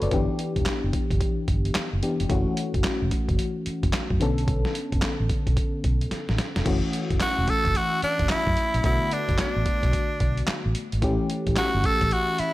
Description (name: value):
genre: R&B, new jack swing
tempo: 110 BPM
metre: 4/4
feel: swing 64% on 16ths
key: unclear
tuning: A4 = 440 Hz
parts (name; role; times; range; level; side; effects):
- FM electric piano with tremolo; accompaniment; 0.0-12.5 s; D3 to D5; -28 LUFS; left 2 dB; none
- vintage muted fingered electric bass; bass; 0.0-12.4 s; E1 to F#2; -26 LUFS; equal; none
- boom bap sampler-style drum kit; drums; 0.0-12.5 s; crash cymbal, handclaps, hi-hat, kick drum, snare drum; -26 LUFS; equal; none
- raspy tenor saxophone; melody; 7.2-12.5 s; D4 to A4; -25 LUFS; right 1 dB; none
room: light reverb, digital ambience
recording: none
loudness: -22 LUFS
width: side -17 dB against mid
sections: 0.0-6.7 A section; 6.7-12.5 B section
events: drum fill 6.1-6.7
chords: 0.1 G6; 2.3 F#m7; 4.2 Bm9; 6.7 F#m7; 8.8 Bm7; 11.0 A7